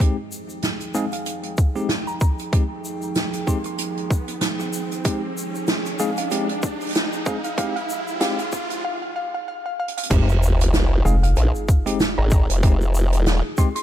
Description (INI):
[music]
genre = glitch hop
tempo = 95 BPM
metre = 4/4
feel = swing 57% on 16ths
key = F minor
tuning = A4 = 444 Hz
[part]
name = dark analog pad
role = sustained chords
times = 0.0-13.8 s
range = F3 to G5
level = -32 LUFS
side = right 2 dB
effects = chorus, sidechain pumping
[part]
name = bell-like tine electric piano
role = stabs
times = 0.0-13.7 s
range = Ab3 to Ab4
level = -29 LUFS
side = left 1 dB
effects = fast stereo tremolo, sidechain pumping, low-pass filter, dub echo
[part]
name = electronic kick drum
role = drums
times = 0.0-13.7 s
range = none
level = -18 LUFS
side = equal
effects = overdrive
[part]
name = unplugged drum kit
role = drums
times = 0.0-13.8 s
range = crash cymbal, hi-hat, rim click, snare drum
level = -25 LUFS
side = right 2 dB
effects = none
[part]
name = egg shaker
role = percussion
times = 0.0-13.8 s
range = none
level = -37 LUFS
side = left 3 dB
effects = none
[part]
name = riser and sub drop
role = sound effects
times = 1.7-12.6 s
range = none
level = -28 LUFS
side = equal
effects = none
[part]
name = woody wave-folded pluck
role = melody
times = 1.0-13.8 s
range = F5 to C6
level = -31 LUFS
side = equal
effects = chorus, dub echo
[part]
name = formant-sweep wobble bass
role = bass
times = 10.1-13.4 s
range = F1 to Bb1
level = -18 LUFS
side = equal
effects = chorus, overdrive
[part]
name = rubbery square bass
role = bass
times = 11.1-11.3 s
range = F1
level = -16 LUFS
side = equal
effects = none
[sound]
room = light reverb, small room ambience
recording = dark, warm production, high-pass filter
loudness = -19 LUFS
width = side -12 dB against mid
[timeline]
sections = 0.0-10.1 A section; 10.1-13.8 B section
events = build-up 0.0-10.1; filter sweep 0.0-10.1; riser 1.7-8.8; break 8.8-10.1; drum fill 9.8-10.1; drop 10.1-13.8; impact 10.1-12.6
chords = 0.0 Fm9